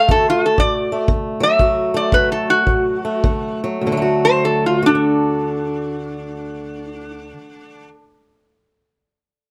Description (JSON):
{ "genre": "acoustic country blues, solo or duo", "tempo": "99-123 BPM", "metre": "4/4", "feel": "swing 65% on 8ths", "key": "D major", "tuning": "A4 = 440 Hz", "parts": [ { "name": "metal-body resonator slide guitar", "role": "melody", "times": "0.0-7.9 s", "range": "D4 to E5", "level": "-19 LUFS", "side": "equal", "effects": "none" }, { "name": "fingerpicked swing-style acoustic guitar", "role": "accompaniment", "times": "0.0-8.0 s", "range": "D2 to D5", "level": "-23 LUFS", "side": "equal", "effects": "none" }, { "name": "kick drum", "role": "drums", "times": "0.1-3.4 s", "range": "none", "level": "-22 LUFS", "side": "equal", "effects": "none" } ], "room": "light reverb", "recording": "close, detailed microphones", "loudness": "-17 LUFS", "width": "mono", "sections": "0.0-3.8 A section; 3.8-8.7 B section", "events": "slowing down 0.0-3.8", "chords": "0.0 D", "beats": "0.09 0.58 1.08 | 1.59 2.12 2.66 3.23 | 3.82 4.43 5.04 5.64 | 6.25 6.86 7.46" }